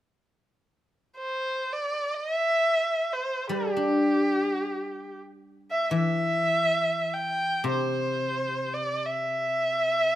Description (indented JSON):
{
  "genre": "chinese traditional, Chinese chamber ensemble",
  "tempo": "free time",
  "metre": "none",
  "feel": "none",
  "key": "C gong mode",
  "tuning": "A4 = 440 Hz",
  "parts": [
    { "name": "rich erhu", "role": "melody", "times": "1.2-10.2 s", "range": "G4 to G5", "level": "-25 LUFS", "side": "equal", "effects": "none" },
    { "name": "guzheng", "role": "accompaniment", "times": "3.5-10.2 s", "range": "C3 to D4", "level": "-29 LUFS", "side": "left 1 dB", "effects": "none" }
  ],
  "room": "light reverb",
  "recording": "close, detailed microphones",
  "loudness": "-24 LUFS",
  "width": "side -13 dB against mid",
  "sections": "0.7-10.2 A section",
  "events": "none",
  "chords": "none"
}